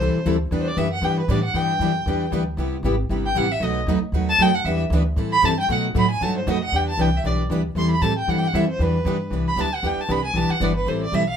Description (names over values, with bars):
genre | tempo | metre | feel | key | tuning
acoustic string swing (jazz manouche) | 232 BPM | 4/4 | swing 55% on 8ths | E minor | A4 = 441 Hz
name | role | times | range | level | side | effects
rich violin | melody | 0.0-11.4 s | B4 to C6 | -23 LUFS | right 1 dB | none
picked plugged-in steel-string acoustic guitar | accompaniment | 0.0-11.2 s | B2 to A4 | -24 LUFS | left 3 dB | none
picked steel-string acoustic guitar | accompaniment | 0.0-11.2 s | B2 to B4 | -27 LUFS | right 5 dB | none
upright bass | bass | 0.0-11.4 s | G1 to B2 | -25 LUFS | equal | none
room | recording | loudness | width
moderate club reverb, RT60 0.6 s | minimal, uncompressed stereo recording | -19 LUFS | side -8 dB against mid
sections
0.0-6.7 A section; 6.7-11.4 A section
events
violin solo 0.0-11.4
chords
0.0 Am7; 0.5 Em7; 2.6 Cmaj7; 3.6 B7; 4.6 Em7; 5.2 Am7; 5.7 B7; 6.7 Em7; 7.8 Am7; 8.8 Em7; 10.9 Am7